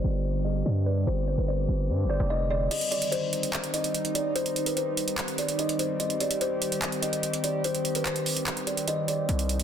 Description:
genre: hip hop, trap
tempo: 146 BPM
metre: 4/4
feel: half-time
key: C minor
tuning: A4 = 436 Hz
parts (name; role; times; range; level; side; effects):
- kalimba; melody; 0.0-9.2 s; B4 to Eb5; -30 LUFS; left 2 dB; low-pass filter
- mallet-like synth pluck; second line; 0.0-2.3 s; B4 to D5; -40 LUFS; right 2 dB; chorus, phaser, digital delay
- warbly tape-like pad; sustained chords; 0.0-9.6 s; D3 to G4; -32 LUFS; right 2 dB; chorus, built-in reverb, phaser
- distorted 808-style bass; bass; 0.0-2.7, 9.3-9.6 s; F1 to G2; -26 LUFS; equal; distortion
- trap drum kit; drums; 2.7-9.6 s; crash cymbal, handclaps, hi-hat; -30 LUFS; right 2 dB; none
room: light reverb, digital ambience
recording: dense, heavily limited modern master, low-pass filter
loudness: -25 LUFS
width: side -9 dB against mid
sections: 0.0-2.7 A section; 2.7-9.6 B section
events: filter sweep 0.0-2.7; kick muted 2.7-9.3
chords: 0.0 Gsus4; 2.7 Cm

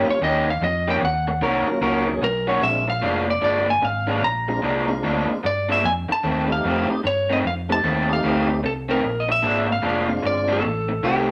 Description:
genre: electric blues shuffle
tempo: 150 BPM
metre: 4/4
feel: swing 64% on 8ths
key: unclear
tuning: A4 = 440 Hz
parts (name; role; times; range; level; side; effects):
- lightly driven lead guitar; melody; 0.0-11.3 s; A4 to Bb5; -25 LUFS; equal; none
- tonewheel organ; accompaniment; 0.0-10.6 s; Gb3 to Ab4; -28 LUFS; equal; slow rotary speaker, overdrive, chorus vibrato
- raw garage guitar; riff; 0.0-11.3 s; F2 to G4; -26 LUFS; equal; overdrive
- fingered electric bass; bass; 0.0-11.3 s; F1 to G2; -30 LUFS; equal; none
- electric guitar through a small old amp; second line; 1.4-2.1, 11.0-11.3 s; G4 to Bb4; -27 LUFS; equal; none
room: moderate studio reverb, RT60 0.7 s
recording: none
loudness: -21 LUFS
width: mono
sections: 0.0-11.3 A section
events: none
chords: 0.0 Eb7; 1.0 Ebm7; 2.6 Bb7; 5.8 F7; 9.0 Bb7; 10.6 F7

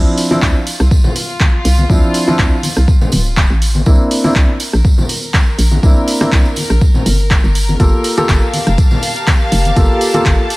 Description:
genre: deep house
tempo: 122 BPM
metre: 4/4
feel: swing 54% on 16ths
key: D minor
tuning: A4 = 440 Hz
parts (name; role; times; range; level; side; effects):
- felt-muted upright piano; stabs; 0.0-10.4 s; F3 to A4; -16 LUFS; equal; sidechain pumping, dub echo
- hollow knocking FM bass; bass; 0.0-10.4 s; D1 to D2; -13 LUFS; equal; sidechain pumping
- warm studio string section; texture; 0.1-10.6 s; F4 to A5; -23 LUFS; left 1 dB; sidechain pumping
- punchy analog drum machine; drums; 0.2-10.6 s; handclaps, hi-hat, rim click; -20 LUFS; equal; none
- tambourine; percussion; 0.2-10.6 s; none; -26 LUFS; right 3 dB; none
- congas; percussion; 0.3-10.2 s; none; -22 LUFS; left 2 dB; none
- electronic kick drum; drums; 0.4-10.4 s; none; -11 LUFS; equal; none
room: studio ambience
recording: vinyl crackle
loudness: -10 LUFS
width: side -21 dB against mid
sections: 0.0-10.6 A section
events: none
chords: 0.0 Dm9; 3.9 C9; 7.8 Gm9

